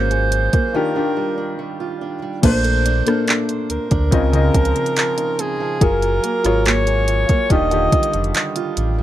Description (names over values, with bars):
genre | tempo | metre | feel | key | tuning
contemporary R&B | 71 BPM | 4/4 | straight | Bb major | A4 = 440 Hz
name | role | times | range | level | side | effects
breathy alto saxophone | melody | 0.0-8.4 s | Ab4 to Eb5 | -21 LUFS | right 1 dB | ping-pong delay
warm concert grand piano | accompaniment | 0.0-9.0 s | Bb2 to Eb5 | -23 LUFS | left 5 dB | none
fingerpicked steel-string acoustic guitar | arpeggios | 0.0-9.0 s | Db3 to C5 | -24 LUFS | right 6 dB | none
sub bass with octave | bass | 0.0-9.0 s | Eb1 to D2 | -19 LUFS | equal | none
smooth R&B drum kit | drums | 0.1-9.0 s | crash cymbal, handclaps, hi-hat, kick drum, rim click | -18 LUFS | equal | overdrive
room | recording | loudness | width
light reverb | none | -15 LUFS | side -13 dB against mid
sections
0.0-2.4 A section; 2.4-9.0 A section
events
break 0.7-2.4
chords
0.0 Gbmaj9; 0.7 Ebmaj9; 2.4 Bbmaj9; 4.1 Dbmaj9; 5.8 Gbmaj9; 7.5 Ebmaj9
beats
0.74 1.59 | 2.43 3.28 4.12 4.97 | 5.81 6.66 7.50 8.35